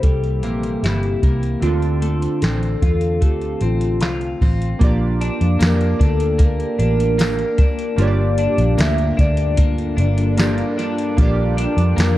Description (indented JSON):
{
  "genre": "indie pop, bedroom pop",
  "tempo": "75 BPM",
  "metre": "4/4",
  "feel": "straight",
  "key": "unclear",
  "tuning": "A4 = 440 Hz",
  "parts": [
    { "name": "warbly nostalgic lead", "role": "melody", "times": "0.0-12.2 s", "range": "F4 to E5", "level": "-24 LUFS", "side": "equal", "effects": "wide subtle chorus, tape echo" },
    { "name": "chorused retro synth keys", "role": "accompaniment", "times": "0.0-12.2 s", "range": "E3 to D5", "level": "-26 LUFS", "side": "right 4 dB", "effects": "cassette tape" },
    { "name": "twelve-string electric guitar", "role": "accompaniment", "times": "0.0-12.2 s", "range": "G2 to F4", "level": "-25 LUFS", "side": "left 3 dB", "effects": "wide subtle chorus, warbly pitch drift, tape echo" },
    { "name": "vintage muted fingered electric bass", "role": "bass", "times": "0.0-12.2 s", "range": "G1 to F2", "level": "-19 LUFS", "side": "equal", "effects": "none" },
    { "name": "soft vintage rhythm box", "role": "drums", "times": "0.0-12.2 s", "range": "hi-hat, kick drum, snare drum", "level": "-18 LUFS", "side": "equal", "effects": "none" },
    { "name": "granular cloud pad", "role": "sustained chords", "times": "6.6-12.2 s", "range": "G3 to Bb4", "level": "-29 LUFS", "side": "left 1 dB", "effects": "built-in reverb" },
    { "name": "tambourine", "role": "percussion", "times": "5.6-12.2 s", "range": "none", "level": "-42 LUFS", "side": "right 3 dB", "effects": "none" }
  ],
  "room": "light reverb, digital ambience",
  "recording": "echo-heavy mix, cassette tape",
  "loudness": "-15 LUFS",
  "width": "side -15 dB against mid",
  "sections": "0.0-4.8 A section; 4.8-12.2 B section",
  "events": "none",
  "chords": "0.0 C7; 1.6 Dm7; 4.8 Bb6; 8.0 Gm7; 11.2 Bb6"
}